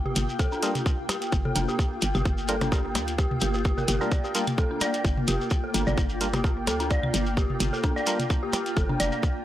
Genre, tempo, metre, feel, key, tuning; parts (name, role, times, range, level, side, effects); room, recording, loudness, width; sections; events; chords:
minimal techno; 129 BPM; 4/4; swing 55% on 16ths; G minor; A4 = 440 Hz
hollow knocking FM bass; bass; 0.0-9.1 s; F1 to D2; -30 LUFS; equal; sidechain pumping
granular cloud pad; texture; 0.0-9.4 s; Bb3 to G5; -31 LUFS; left 1 dB; built-in reverb, sidechain pumping
dark detuned synth bell; riff; 0.1-9.0 s; D4 to D5; -31 LUFS; equal; chorus, sidechain pumping, tape echo
electronic toms, claves and percussion blips; percussion; 0.1-9.1 s; -32 LUFS; equal; tape echo
electronic hi-hat; drums; 0.2-9.1 s; -31 LUFS; equal
shekere; percussion; 0.2-9.3 s; -35 LUFS; left 1 dB
electronic kick drum; drums; 0.4-9.3 s; -25 LUFS; equal
percussive organ stab; stabs; 0.6-8.2 s; G3 to Bb4; -33 LUFS; right 2 dB; chorus, tape echo
little or no reverb; dry, gritty hardware recording, transformer saturation, faint mains hum; -23 LUFS; side -13 dB against mid
0.0-9.4 A section
0.0 Gm7